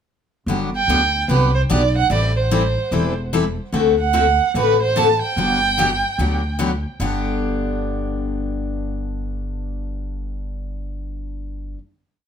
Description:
acoustic string swing (jazz manouche); 147 BPM; 4/4; swing 62% on 8ths; G major; A4 = 441 Hz
picked steel-string acoustic guitar; accompaniment; 0.5-11.8 s; G2 to A4; -22 LUFS; left 5 dB
upright bass; bass; 0.5-11.7 s; E1 to D2; -23 LUFS; equal
warm violin; melody; 0.8-6.6 s; B4 to A5; -19 LUFS; right 6 dB; tape echo
moderate studio reverb, RT60 0.5 s; -17 LUFS; side -8 dB against mid
0.5-7.0 A section; 7.0-10.3 final chord
0.5 Gmaj7; 2.1 Am7; 3.7 D7; 5.4 Gmaj7; 7.0 G
| 0.47 0.88 1.28 1.69 | 2.10 2.50 2.91 3.32 | 3.73 4.13 4.54 4.95 | 5.36 5.77 6.18 6.59 | 7.00 7.41 7.82 8.22 | 8.63 9.04 9.45 9.86

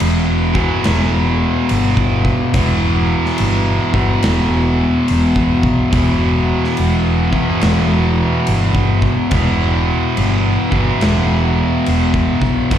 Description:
stoner and doom metal; 71 BPM; 4/4; swing 65% on 8ths; E minor; A4 = 440 Hz
fuzz guitar; riff; 0.0-12.8 s; E2 to E3; -16 LUFS; equal; distortion
hollow-body short-scale fingered electric bass; bass; 0.0-12.8 s; E1 to B1; -17 LUFS; equal; overdrive
big rock drum kit; drums; 0.0-12.8 s; crash cymbal, kick drum, snare drum; -21 LUFS; equal
small room ambience; live gig heard through the venue's PA, recital hall reverb; -13 LUFS; side -10 dB against mid
0.0-12.8 A section
0.0 Em
0.00 0.84 1.69 | 2.54 3.39 4.24 5.08 | 5.93 6.78 7.62 8.47 | 9.32 10.16 11.01 11.86 | 12.71

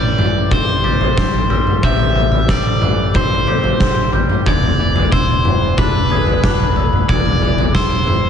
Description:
post-rock; 91 BPM; 4/4; straight; A minor; A4 = 440 Hz
cranked stack guitar; melody; 0.0-8.3 s; B4 to E5; -19 LUFS; left 1 dB; overdrive, tape echo
warbly tape-like pad; sustained chords; 0.1-8.3 s; E3 to E5; -29 LUFS; equal
glockenspiel with rubber mallets; arpeggios; 0.0-8.3 s; E6 to A6; -28 LUFS; right 3 dB; tape echo
twangy electric guitar; arpeggios; 0.0-8.3 s; E2 to G#4; -26 LUFS; left 2 dB; spring reverb, tape echo
growling picked electric bass; bass; 0.0-8.3 s; E1 to A1; -21 LUFS; right 1 dB; overdrive
oversized low-tuned drum kit; drums; 0.2-8.2 s; kick drum, snare drum, toms; -15 LUFS; equal
light reverb, small room ambience; nothing above 10.4 kHz; -13 LUFS; side -8 dB against mid
0.0-8.3 A section
0.0 Am7; 4.5 E7
0.52 1.17 | 1.83 2.49 3.15 3.81 | 4.46 5.12 5.78 6.43 | 7.09 7.75

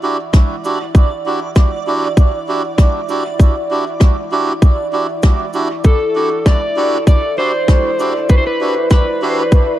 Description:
ambient dub; 98 BPM; 4/4; swing 57% on 16ths; E minor; A4 = 440 Hz
deep dark ambient pad; sustained chords; 0.0-9.8 s; E4 to F#5; -26 LUFS; equal; chorus, built-in reverb
melodica; stabs; 0.0-9.4 s; D4 to G4; -20 LUFS; right 2 dB; dub echo
backwards swelling texture; texture; 0.0-9.8 s; D5; -26 LUFS; right 4 dB; built-in reverb
electronic kick drum; drums; 0.3-9.7 s; -9 LUFS; equal; overdrive
rim click and cabasa; drums; 0.3-9.7 s; -28 LUFS; equal; dub echo
electric slide guitar; melody; 5.9-9.8 s; A4 to D5; -16 LUFS; left 1 dB; dub echo
small room ambience; dark, warm production; -12 LUFS; side -13 dB against mid
0.0-9.8 A section
fade-in on ambient pad 0.0-9.8
0.0 Em9
0.34 | 0.95 1.56 2.18 2.79 | 3.40 4.01 4.62 5.24 | 5.85 6.46 7.07 7.69 | 8.30 8.91 9.52

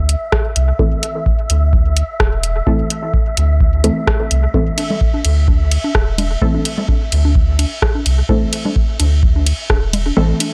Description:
dub techno; 128 BPM; 4/4; swing 55% on 16ths; A minor; A4 = 439 Hz
filtered dub chord stab; stabs; 0.0-10.5 s; E3 to A4; -23 LUFS; equal; chorus, phaser, sidechain pumping, dub echo
soft dub sub bass; bass; 0.0-10.3 s; E1 to D2; -17 LUFS; equal; transformer saturation, sidechain pumping
wind-like tuned noise texture; texture; 0.0-10.5 s; E5; -30 LUFS; equal; built-in reverb, sidechain pumping
deep house drum kit; drums; 0.1-10.5 s; hi-hat, ride cymbal, rim click; -24 LUFS; equal; overdrive, dub echo
electronic kick drum; drums; 0.3-9.8 s; -18 LUFS; equal
congas; percussion; 4.5-10.5 s; -26 LUFS; equal; sidechain pumping on perc, dub echo
little or no reverb; dry, gritty hardware recording; -16 LUFS; mono
0.0-10.5 A section
filter sweep on synth stab 0.0-10.5; kick drops out 10.2-10.5
0.0 Am
0.33 | 0.79 1.26 1.73 2.20 | 2.67 3.14 3.61 4.08 | 4.54 5.01 5.48 5.95 | 6.42 6.89 7.36 7.83 | 8.29 8.76 9.23 9.70 | 10.17

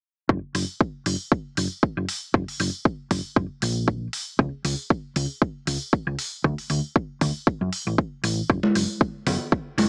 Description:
nu-disco, nu disco; 117 BPM; 4/4; swing 55% on 16ths; A4 = 440 Hz
hollow-body short-scale fingered electric bass; bass; 0.3-9.9 s; F#1 to F#2; -28 LUFS; equal; sidechain pumping
electronic kick drum; drums; 0.3-9.6 s; -24 LUFS; equal
electronic hi-hat; drums; 0.5-9.9 s; -33 LUFS; equal
congas; percussion; 8.6-9.9 s; -26 LUFS; equal
little or no reverb; small speaker sound; -26 LUFS; mono
0.3-9.9 A section
| 0.29 0.81 1.32 1.83 | 2.34 2.86 3.37 3.88 | 4.39 4.91 5.42 5.93 | 6.45 6.96 7.47 7.98 | 8.50 9.01 9.52

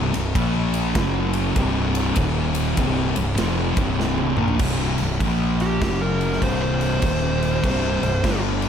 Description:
stoner and doom metal; 99 BPM; 4/4; swing 64% on 8ths; A4 = 435 Hz
thick fuzz guitar; riff; 0.0-8.7 s; C2 to Bb3; -24 LUFS; left 10 dB; distortion
thick fuzz guitar; riff; 0.0-8.7 s; C2 to Bb3; -26 LUFS; right 9 dB; distortion
fuzz fingered electric bass; bass; 0.0-8.7 s; C1 to Bb1; -25 LUFS; equal; overdrive
big rock drum kit; drums; 0.1-8.7 s; crash cymbal, kick drum, ride cymbal, snare drum, toms; -26 LUFS; equal
fuzz lead guitar; melody; 5.6-8.4 s; G4 to C5; -26 LUFS; right 2 dB; distortion, analog delay
light reverb, small room ambience; -19 LUFS; side -8 dB against mid
0.0-4.6 A section; 4.6-8.7 B section
drum fill 4.0-4.6; lead electric guitar solo 4.6-8.7
0.4 Bb5; 1.0 F#5; 1.6 C5; 2.2 Eb5; 2.8 C5; 5.2 Bb5; 5.8 F#5; 6.4 C5; 7.0 Eb5; 7.6 C5
0.36 0.97 1.57 | 2.18 2.79 3.39 4.00 | 4.61 5.21 5.82 6.43 | 7.04 7.64 8.25

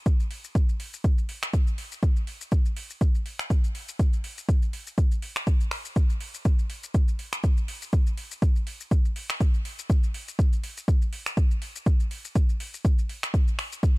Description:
techno; 122 BPM; 4/4; swing 56% on 16ths
deep house drum kit; drums; 0.1-13.9 s; finger snaps, hi-hat, shaker; -35 LUFS; equal; overdrive
electronic kick drum; drums; 0.1-13.9 s; -22 LUFS; equal; overdrive
little or no reverb; -23 LUFS; side -23 dB against mid
0.0-14.0 A section
0.06 | 0.55 1.04 1.53 2.03 | 2.52 3.01 3.50 4.00 | 4.49 4.98 5.47 5.96 | 6.45 6.95 7.44 7.93 | 8.42 8.91 9.40 9.90 | 10.39 10.88 11.37 11.86 | 12.36 12.85 13.34 13.83

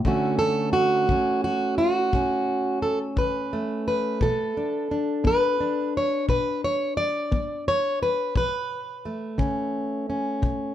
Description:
acoustic country blues, solo or duo; 58 BPM (dotted quarters); 12/8; straight; A4 = 440 Hz
fingerpicked plugged-in steel-string acoustic guitar; melody; 0.0-10.7 s; B2 to D5; -22 LUFS; equal
kick drum; drums; 0.0-10.6 s; -26 LUFS; left 2 dB
moderate studio reverb, RT60 0.6 s; dark, warm production; -22 LUFS; side -11 dB against mid
0.0-10.7 A section
0.1 Bm9
| 0.05 1.09 2.13 3.17 | 4.21 5.25 6.29 7.32 | 8.36 9.39 10.43

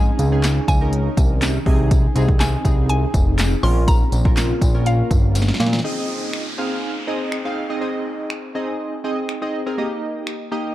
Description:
dance-pop; 122 BPM; 4/4; straight; Ab major; A4 = 440 Hz
mallet-like synth pluck; melody; 0.0-5.6 s; F5 to C6; -28 LUFS; equal; chorus, tape echo
chorused retro synth keys; accompaniment; 0.0-10.7 s; Bb3 to F5; -25 LUFS; right 1 dB; tremolo, sidechain pumping
ethereal airy pad; sustained chords; 0.0-5.8 s; C3 to Ab4; -29 LUFS; left 1 dB; ensemble chorus, built-in reverb, sidechain pumping
fat analog bass; bass; 0.0-5.8 s; F1 to Bb2; -18 LUFS; equal; sidechain pumping
deep house drum kit; drums; 0.2-10.4 s; finger snaps, handclaps, hi-hat, kick drum, snare drum; -19 LUFS; equal
tambourine; percussion; 0.2-5.7 s; -36 LUFS; left 5 dB
downlifter; sound effects; 5.8-9.8 s; -32 LUFS; right 1 dB
little or no reverb; dark, warm production; -17 LUFS; side -14 dB against mid
0.0-5.8 A section; 5.8-10.7 B section
drum fill 5.4-5.8
0.0 Dbsus2; 1.7 Ab/C; 3.6 Bbm; 5.8 Ab; 9.8 Eb
0.43 0.93 1.42 | 1.91 2.40 2.89 3.39 | 3.88 4.37 4.86 5.35 | 5.84 6.34 6.83 7.32 | 7.81 8.30 8.80 9.29 | 9.78 10.27

